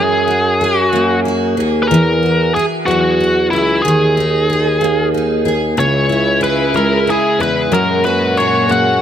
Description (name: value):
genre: six-eight pop ballad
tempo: 62 BPM (dotted quarters)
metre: 6/8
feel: straight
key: unclear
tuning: A4 = 440 Hz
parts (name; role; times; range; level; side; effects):
- biting lead guitar; melody; 0.0-9.0 s; E4 to F#5; -15 LUFS; equal; overdrive, tape echo
- picked steel-string acoustic guitar; accompaniment; 0.0-9.0 s; C#3 to G#4; -17 LUFS; equal; double-tracked left and right
- dark bassoon; bass; 0.0-9.0 s; C#2 to F#2; -18 LUFS; equal; none
- warm studio string section; sustained chords; 5.8-9.0 s; A#2 to F#4; -20 LUFS; left 2 dB; none
room: light reverb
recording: none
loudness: -12 LUFS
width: side -9 dB against mid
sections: 0.0-9.0 A section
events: none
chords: 0.0 F#add9; 1.9 Eadd9; 3.8 G#sus2/D#; 5.8 C#m; 7.7 F#add9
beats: 0.93 | 1.90 2.87 | 3.84 4.81 | 5.78 6.75 | 7.71 8.69